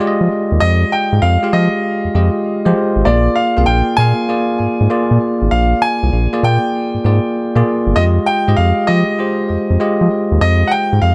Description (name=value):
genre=R&B, new jack swing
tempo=98 BPM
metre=4/4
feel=swing 67% on 16ths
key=F dorian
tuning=A4 = 441 Hz
part: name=bright concert grand piano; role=melody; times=0.0-11.1 s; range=D5 to Ab5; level=-20 LUFS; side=equal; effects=none
part: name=bell-like tine electric piano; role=accompaniment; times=0.0-11.1 s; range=Ab3 to F5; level=-19 LUFS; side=equal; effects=none
part: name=round analog bass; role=bass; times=0.2-11.1 s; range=G1 to F3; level=-16 LUFS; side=equal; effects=none
room=light reverb, studio reverb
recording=none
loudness=-15 LUFS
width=mono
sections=0.0-11.1 A section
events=none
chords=0.0 Fm9; 3.1 Bb7; 8.0 Fm9